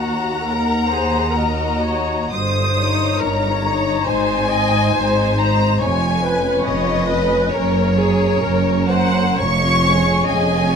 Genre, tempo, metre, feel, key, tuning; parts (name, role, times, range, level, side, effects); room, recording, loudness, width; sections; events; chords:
classical, slow romantic movement for string orchestra; 58-72 BPM; 4/4; rubato; A4 = 440 Hz
rich chamber violin section; melody; 0.0-10.8 s; Db5 to Eb6; -22 LUFS; left 4 dB
rich chamber violin section; second line; 0.0-10.7 s; Db4 to Gb5; -23 LUFS; left 4 dB
rich chamber viola section; accompaniment; 0.0-10.8 s; Gb4 to Eb5; -22 LUFS; equal
rich chamber double bass section; bass; 0.0-10.8 s; F1 to Eb2; -22 LUFS; right 2 dB
rich studio cello section; bass; 0.0-10.8 s; Eb2 to Ab2; -22 LUFS; right 4 dB
light reverb; -15 LUFS; side -6 dB against mid
0.0-10.8 A section
0.0 Ebm; 2.3 Eb7/G; 4.1 Ab; 5.8 Db7/F; 7.5 Gb; 9.4 Db/F